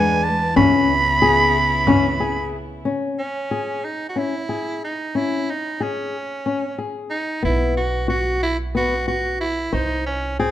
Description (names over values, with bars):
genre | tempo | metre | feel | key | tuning
contemporary instrumental, chamber music in an uneven meter | 183 BPM (eighths) | 7/8 | straight | C# minor | A4 = 440 Hz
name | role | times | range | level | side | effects
raspy soprano saxophone | melody | 0.0-10.5 s | B#3 to B5 | -22 LUFS | right 2 dB | none
rich chamber string section | sustained chords | 0.0-2.8 s | C#3 to B4 | -26 LUFS | right 1 dB | none
flamenco guitar | arpeggios | 0.0-10.5 s | G#3 to B#4 | -21 LUFS | left 4 dB | none
upright bass | bass | 0.0-2.8, 7.4-10.5 s | B1 to E2 | -27 LUFS | right 2 dB | none
frame drum | percussion | 0.2-2.2 s | none | -25 LUFS | right 3 dB | none
room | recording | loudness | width
moderate recital hall reverb, RT60 1.4 s | dark, warm production | -18 LUFS | side -12 dB against mid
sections
0.0-2.8 A section; 2.8-10.5 B section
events
none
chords
0.0 E7; 0.6 C#m7; 2.8 C#m; 7.4 B5; 9.7 G#/B#